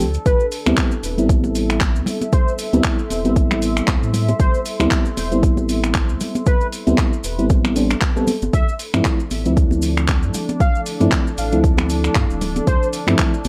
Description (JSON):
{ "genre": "deep house", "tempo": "116 BPM", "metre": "4/4", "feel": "swing 57% on 16ths", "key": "A minor", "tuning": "A4 = 436 Hz", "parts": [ { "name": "mellow FM electric piano", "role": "stabs", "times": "0.0-13.3 s", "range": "F3 to A4", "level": "-23 LUFS", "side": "equal", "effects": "chorus, sidechain pumping, analog delay" }, { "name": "sub bass with octave", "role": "bass", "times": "0.0-13.5 s", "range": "D1 to A2", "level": "-25 LUFS", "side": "equal", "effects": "sidechain pumping" }, { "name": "deep house drum kit", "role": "drums", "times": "0.0-13.5 s", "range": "finger snaps, handclaps, hi-hat", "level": "-28 LUFS", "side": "equal", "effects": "overdrive" }, { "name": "cabasa", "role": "percussion", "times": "0.0-13.5 s", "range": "none", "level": "-38 LUFS", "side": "equal", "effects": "none" }, { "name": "deep dark ambient pad", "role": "texture", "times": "0.0-13.5 s", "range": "D4 to C6", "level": "-32 LUFS", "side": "equal", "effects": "chorus, built-in reverb, sidechain pumping" }, { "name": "warm velvety synth lead", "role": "melody", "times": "0.3-12.9 s", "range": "B4 to F5", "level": "-27 LUFS", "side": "equal", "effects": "chorus, analog delay" }, { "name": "electronic kick drum", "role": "drums", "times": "0.3-13.3 s", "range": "none", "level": "-20 LUFS", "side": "equal", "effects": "overdrive" }, { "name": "congas", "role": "percussion", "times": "0.7-13.5 s", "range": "none", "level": "-28 LUFS", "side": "equal", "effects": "none" } ], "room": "little or no reverb", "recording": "dry, gritty hardware recording", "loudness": "-18 LUFS", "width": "mono", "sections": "0.0-13.5 A section", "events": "none", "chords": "0.3 Am9; 8.5 Dm9" }